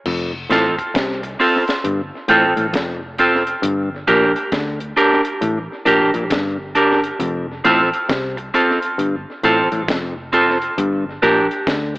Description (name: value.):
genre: roots reggae.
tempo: 67 BPM.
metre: 4/4.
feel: swing 63% on 16ths.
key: F major.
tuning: A4 = 440 Hz.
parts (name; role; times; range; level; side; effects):
auto-wah clav; riff; 0.1-11.9 s; F2 to D3; -22 LUFS; left 2 dB; overdrive.
vintage muted fingered electric bass; bass; 0.1-12.0 s; F1 to D2; -30 LUFS; equal; none.
deep reggae drum kit; drums; 0.1-12.0 s; crash cymbal, hi-hat, kick drum, snare drum; -24 LUFS; equal; tape echo.
semi-hollow electric guitar; accompaniment; 0.5-11.5 s; C4 to Bb4; -16 LUFS; right 1 dB; tape echo.
room: moderate spring reverb, RT60 2.4 s.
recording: AM radio sound.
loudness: -15 LUFS.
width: side -21 dB against mid.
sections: 0.1-12.0 A section.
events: none.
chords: 0.1 F; 3.6 Gm; 7.2 F; 10.8 Gm.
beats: | 0.05 0.95 1.84 2.73 | 3.63 4.52 5.42 6.31 | 7.20 8.10 8.99 9.88 | 10.78 11.67.